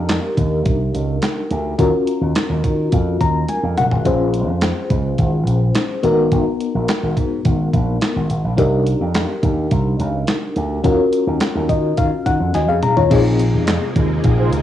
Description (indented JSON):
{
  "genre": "early-eighties boogie funk",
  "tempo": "106 BPM",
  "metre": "4/4",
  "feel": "straight",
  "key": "unclear",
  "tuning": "A4 = 438 Hz",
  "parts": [
    { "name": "FM electric piano with tremolo", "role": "accompaniment", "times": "0.0-14.6 s", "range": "Cb4 to Bb5", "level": "-19 LUFS", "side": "left 3 dB", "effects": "phaser, cassette tape" },
    { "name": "slap bass with an envelope filter", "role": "bass", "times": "0.0-14.6 s", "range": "Gb1 to Eb3", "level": "-19 LUFS", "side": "right 1 dB", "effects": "none" },
    { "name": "clean 12-bit digital drum machine", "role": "drums", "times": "0.1-14.6 s", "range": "crash cymbal, handclaps, hi-hat, kick drum, snare drum, toms", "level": "-20 LUFS", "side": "right 1 dB", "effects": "cassette tape" },
    { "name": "string machine, violins", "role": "sustained chords", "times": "13.1-14.6 s", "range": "C3 to Eb4", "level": "-24 LUFS", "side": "right 2 dB", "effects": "ensemble chorus, cassette tape" },
    { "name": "mellow synth brass", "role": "second line", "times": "14.4-14.5 s", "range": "F4 to C5", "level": "-21 LUFS", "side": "right 3 dB", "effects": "chorus, cassette tape" }
  ],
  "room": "little or no reverb",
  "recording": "home recording on cassette, studio reverb",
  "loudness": "-15 LUFS",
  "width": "side -11 dB against mid",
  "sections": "0.0-13.1 A section; 13.1-14.6 B section",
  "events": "FM electric piano fill 2.9-4.1, 11.4-13.1; drum fill 3.5-4.1, 12.5-13.1",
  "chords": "0.0 Cm9; 1.8 Ebm9; 4.1 Bbm9; 6.0 Abm9; 8.6 Cm9; 10.8 Ebm9; 13.1 Bb9sus4",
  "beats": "0.09 0.66 1.22 | 1.79 2.36 2.92 3.49 | 4.05 4.62 5.19 5.75 | 6.32 6.88 7.45 8.02 | 8.58 9.15 9.71 10.28 | 10.85 11.41 11.98 12.54 | 13.11 13.68 14.24"
}